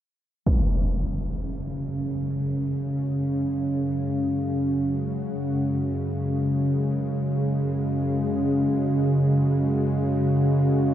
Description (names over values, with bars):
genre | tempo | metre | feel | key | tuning
dark ambient drone | free time | none | none | unclear | A4 = 440 Hz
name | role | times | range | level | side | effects
sweeping resonant pad | sustained chords | 0.5-10.9 s | C#3 to F#4 | -30 LUFS | left 1 dB | chorus
bowed-like drone | drone | 1.0-10.9 s | F#2 to C#3 | -23 LUFS | equal | built-in reverb
impact | percussion | 0.5-0.7 s | none | -26 LUFS | equal | low-pass filter on sfx
room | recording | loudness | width
wet huge ambient reverb, RT60 7.7 s | dark, warm production | -22 LUFS | side -11 dB against mid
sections
0.5-10.9 A section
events
fade-in on analog synth pad 0.5-10.9; filter sweep on synth drone 0.5-10.9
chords
0.5 F#sus2